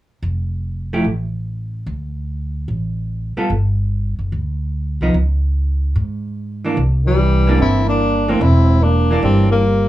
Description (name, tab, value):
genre	jazz, small-group swing and bop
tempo	147 BPM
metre	4/4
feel	swing 67% on 8ths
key	C mixolydian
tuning	A4 = 440 Hz
part	upright bass	bass	0.2-9.9 s	E1 to Ab2	-17 LUFS	equal	none
part	vintage hollow-body jazz guitar	accompaniment	0.9-9.6 s	E3 to A4	-19 LUFS	right 2 dB	none
part	mellow trombone	second line	7.0-9.9 s	E3 to C4	-19 LUFS	right 3 dB	none
part	breathy tenor saxophone	melody	7.1-9.9 s	G3 to E4	-18 LUFS	left 3 dB	none
room	light reverb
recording	small room ambience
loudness	-15 LUFS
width	side -14 dB against mid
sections	0.2-6.8 A section; 6.8-9.9 B section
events	none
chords	0.2 F; 1.9 D5; 3.5 G5; 5.1 Db5; 6.8 C9